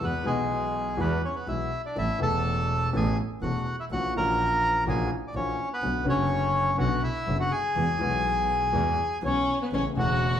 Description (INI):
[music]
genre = tango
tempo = 124 BPM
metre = 4/4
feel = rubato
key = A major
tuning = A4 = 439 Hz
[part]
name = bandoneon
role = melody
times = 0.0-10.4 s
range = G#3 to A#5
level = -27 LUFS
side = equal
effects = none
[part]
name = warm concert grand piano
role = accompaniment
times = 0.0-10.4 s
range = E1 to A4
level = -29 LUFS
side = left 2 dB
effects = none
[part]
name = bright double bass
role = bass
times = 0.0-10.4 s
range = E1 to E2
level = -32 LUFS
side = right 2 dB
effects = none
[part]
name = warm violin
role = second line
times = 9.2-10.4 s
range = B3 to F#4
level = -29 LUFS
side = left 2 dB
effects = none
[sound]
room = wet large studio reverb, RT60 1.1 s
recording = band playing live in one room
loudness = -24 LUFS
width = side -9 dB against mid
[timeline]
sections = 0.0-10.4 A section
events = none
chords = 0.0 Eadd9; 2.0 Asus2; 3.9 F#7/A#; 5.8 Bmadd9; 7.8 Eadd9; 9.7 Aadd9